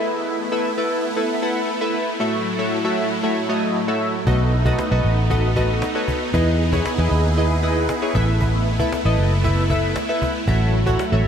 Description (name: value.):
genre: dance-pop.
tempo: 116 BPM.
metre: 4/4.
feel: straight.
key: unclear.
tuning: A4 = 440 Hz.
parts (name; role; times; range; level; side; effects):
chorused retro synth keys; accompaniment; 0.0-11.3 s; A3 to F#5; -22 LUFS; equal; none.
supersaw chords; sustained chords; 0.0-11.3 s; A2 to G#4; -24 LUFS; equal; analog chorus.
vintage muted fingered electric bass; bass; 4.3-11.3 s; F#1 to E2; -19 LUFS; equal; none.
cajon; drums; 4.3-11.3 s; none; -29 LUFS; equal; none.
room: moderate huge ambient reverb, RT60 4.6 s.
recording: dreamy mix soaked in reverb.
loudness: -18 LUFS.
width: side -8 dB against mid.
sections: 0.0-11.3 A section.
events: none.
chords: 0.0 Asus2; 2.2 F#m7/A; 4.3 B7; 6.3 Emaj7; 8.1 Asus2; 10.5 F#m7/A.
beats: | 0.13 0.65 1.17 1.68 | 2.20 2.72 3.23 3.75 | 4.27 4.79 5.30 5.82 | 6.34 6.86 7.37 7.89 | 8.41 8.93 9.44 9.96 | 10.48 10.99.